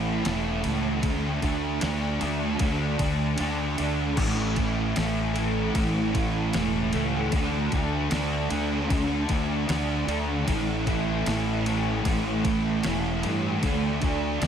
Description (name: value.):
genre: rock, shoegaze and dream pop.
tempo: 76 BPM.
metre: 4/4.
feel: straight.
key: unclear.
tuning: A4 = 440 Hz.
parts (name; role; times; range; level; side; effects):
fuzz guitar; riff; 0.0-14.5 s; A2 to D4; -26 LUFS; right 1 dB; distortion, analog chorus.
fuzz fingered electric bass; bass; 0.0-14.5 s; E1 to G2; -30 LUFS; equal; overdrive.
crisp 8-bit digital drum machine; drums; 0.3-14.5 s; crash cymbal, kick drum, ride cymbal, snare drum; -31 LUFS; left 1 dB; overdrive.
room: wet church reverb, RT60 2.6 s.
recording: dreamy mix soaked in reverb.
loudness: -23 LUFS.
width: side -8 dB against mid.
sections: 0.0-14.5 A section.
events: kick and snare drop out 3.4-4.2.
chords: 0.0 A5; 1.0 D5; 4.2 A5; 7.3 D5; 10.5 A5; 13.6 D5.